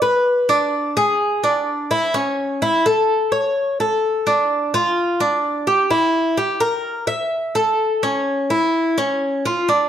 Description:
latin; 127 BPM; 4/4; straight; A4 = 440 Hz
Cuban tres; solo; 0.0-9.9 s; C#4 to E5; -16 LUFS; equal
moderate large studio reverb, RT60 1.3 s; dark, warm production; -16 LUFS; side -10 dB against mid
0.0-9.9 A section

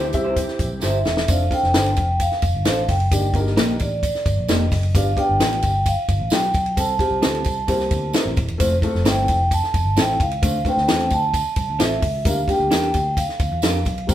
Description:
uptempo 1960s-style soul; 131 BPM; 4/4; straight; F major; A4 = 440 Hz
mellow horn section; second line; 0.0-1.0 s; E3 to G4; -33 LUFS; equal
electric guitar through a small old amp; stabs; 0.0-13.8 s; Bb3 to C5; -25 LUFS; right 1 dB
vintage muted picked electric bass; bass; 0.0-14.1 s; Eb1 to F2; -23 LUFS; equal
dark upright piano; accompaniment; 0.1-14.1 s; G3 to F5; -25 LUFS; left 1 dB
compact cocktail drum kit; drums; 0.1-14.1 s; hi-hat, kick drum, ride cymbal, snare drum; -22 LUFS; equal
tambourine; percussion; 0.1-14.1 s; -35 LUFS; right 3 dB
vibraphone with soft mallets; melody; 0.9-14.1 s; D5 to A5; -22 LUFS; right 1 dB
wet studio reverb, RT60 0.8 s; band playing live in one room; -17 LUFS; side -12 dB against mid
0.0-1.3 A section; 1.3-14.1 B section
drum fill 0.8-1.3
0.0 C; 1.3 F6; 3.1 Ebmaj7/G; 4.9 G7; 6.8 F/C; 7.7 C7; 8.6 Fmaj7; 10.4 Dm7; 12.3 Bb6/D

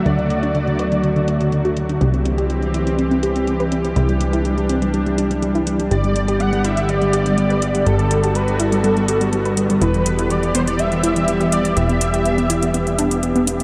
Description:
progressive house; 123 BPM; 4/4; straight; E minor; A4 = 445 Hz
unison lead; melody; 0.0-1.7, 5.9-13.2 s; A4 to F#5; -26 LUFS; equal; ensemble chorus, diffuse ambient delay
lush unison pad; sustained chords; 0.0-13.6 s; D3 to G4; -23 LUFS; equal; chorus
unison pluck; arpeggios; 0.0-13.6 s; D3 to B4; -24 LUFS; equal; diffuse ambient delay
plucky analog bass; bass; 0.0-13.6 s; E1 to D2; -25 LUFS; equal
electronic hi-hat; drums; 0.1-13.6 s; -31 LUFS; equal; overdrive, low-pass filter on hats, low-pass filter on cymbals, low-pass filter on snare, low-pass filter on toms, low-pass filter on room
wet huge ambient reverb, RT60 8.1 s; dreamy mix soaked in reverb; -18 LUFS; mono
0.0-13.6 A section
filter sweep on drum 0.0-13.6; filter sweep on synth pluck 0.0-13.6
0.0 D; 2.0 C; 5.9 G; 9.8 Em

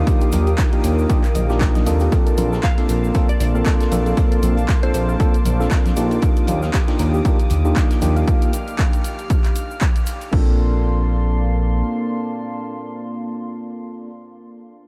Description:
deep house; 117 BPM; 4/4; swing 56% on 16ths; Bb major; A4 = 439 Hz
warm analog pad; sustained chords; 0.0-14.1 s; Bb3 to F6; -32 LUFS; equal; chorus, sidechain pumping
tine electric piano; stabs; 0.0-14.1 s; Bb3 to A4; -27 LUFS; equal; vintage 12-bit sampler grit, sidechain pumping, analog delay
smooth synth bass; bass; 0.0-11.8 s; Bb1 to Eb2; -21 LUFS; equal; tube saturation, sidechain pumping
deep dark ambient pad; texture; 0.2-14.3 s; Eb3 to C6; -35 LUFS; equal; chorus, built-in reverb, sidechain pumping
soft round pluck; arpeggios; 0.1-10.6 s; G4 to F5; -35 LUFS; equal
electronic kick drum; drums; 0.1-10.4 s; -20 LUFS; equal; overdrive
loose indie drum kit; drums; 0.1-8.2 s; hi-hat, snare drum; -44 LUFS; equal
punchy analog drum machine; drums; 0.1-10.4 s; crash cymbal, handclaps, hi-hat; -34 LUFS; equal; overdrive
cabasa; percussion; 0.1-10.3 s; -41 LUFS; equal
congas; percussion; 0.3-8.1 s; -33 LUFS; equal
glassy wavetable pluck; melody; 2.6-5.0 s; C5 to F5; -35 LUFS; equal
light reverb, digital ambience; -18 LUFS; mono
0.0-10.3 A section; 10.3-14.4 B section
drop 0.0-10.3
0.0 Bbmaj9; 6.2 Ebmaj9; 10.3 Bbmaj9

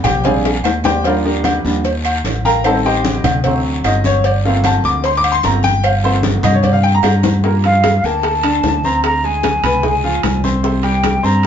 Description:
Afro-Cuban jazz; 150 BPM; 4/4; straight; G minor; A4 = 440 Hz
clear baby grand piano; accompaniment; 0.0-11.5 s; Bb2 to D6; -17 LUFS; left 1 dB
modern bright fingered electric bass; bass; 0.0-11.5 s; G1 to G2; -17 LUFS; equal
agogo bells and timbales; percussion; 0.0-11.5 s; -22 LUFS; equal
claves; percussion; 0.0-7.2 s; -29 LUFS; right 7 dB
congas; percussion; 0.0-11.5 s; -23 LUFS; equal
cowbell and bongos; percussion; 0.0-11.4 s; -22 LUFS; left 2 dB
guiro; percussion; 0.0-11.5 s; -29 LUFS; left 3 dB
breathy mellow jazz flute; melody; 7.7-11.5 s; F5 to Bb5; -16 LUFS; equal
wet small room reverb, RT60 0.5 s; band playing live in one room, nothing above 7.6 kHz; -12 LUFS; side -8 dB against mid
0.0-7.4 A section; 7.4-11.5 B section
grand piano solo 0.0-7.4; drum fill 0.4-1.0, 7.0-7.4
0.2 Bb13; 1.0 Ebmaj9; 2.6 Am7b5; 3.4 D7; 4.2 Gm11; 9.0 Bm69; 9.8 C#; 10.6 C7(no3)

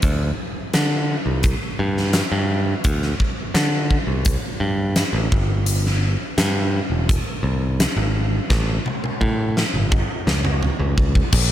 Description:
classic rock; 85 BPM; 4/4; straight; A4 = 440 Hz
modern bright picked electric bass; bass; 0.0-11.5 s; E1 to D3; -20 LUFS; equal
huge arena drum kit; drums; 0.0-11.5 s; crash cymbal, hi-hat, kick drum, snare drum, toms; -21 LUFS; equal
little or no reverb; -18 LUFS; side -12 dB against mid
0.0-11.3 A section
drum fill 8.5-11.3

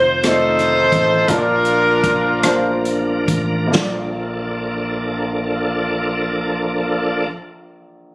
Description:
slow gospel; 43-60 BPM (dotted quarters); 6/8; straight; Bb major; A4 = 440 Hz
clear horn section; melody; 0.0-2.8 s; D4 to C5; -14 LUFS; equal
warm baby grand piano; accompaniment; 0.0-8.1 s; Bb1 to A5; -23 LUFS; equal
bright tonewheel organ; sustained chords; 0.0-7.3 s; Eb3 to Bb4; -22 LUFS; equal; fast rotary speaker, overdrive, chorus vibrato
fingered electric bass; bass; 0.0-7.3 s; F1 to Bb1; -27 LUFS; equal
natural country drum kit; drums; 0.2-4.0 s; hi-hat, kick drum, rim click, snare drum; -21 LUFS; equal
moderate large studio reverb, RT60 1.3 s, small room ambience; recorded on a phone in the room, studio ambience, compression; -15 LUFS; side -24 dB against mid
0.0-3.7 A section; 3.7-8.1 B section
slowing down 0.0-3.7
0.0 F7; 1.3 Bbmaj7

